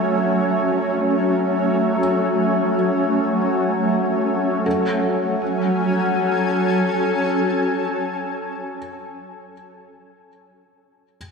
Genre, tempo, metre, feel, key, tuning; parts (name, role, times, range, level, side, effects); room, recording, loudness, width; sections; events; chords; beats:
ambient; free time; F# minor; A4 = 440 Hz
shimmering ambient pad; sustained chords; 0.0-9.2 s; F#3 to G#5; -19 LUFS; right 1 dB; chorus, built-in reverb
felt-muted upright piano; arpeggios; 0.0-11.2 s; A4; -31 LUFS; equal; ping-pong delay
overtone-sweeping drone; drone; 0.0-8.8 s; F#3 to F#4; -25 LUFS; left 4 dB; chorus, built-in reverb
wet concert hall reverb, RT60 2.1 s; cassette tape; -18 LUFS; side -5 dB against mid
0.0-4.7 A section; 4.7-8.7 B section
0.0 F#m
free time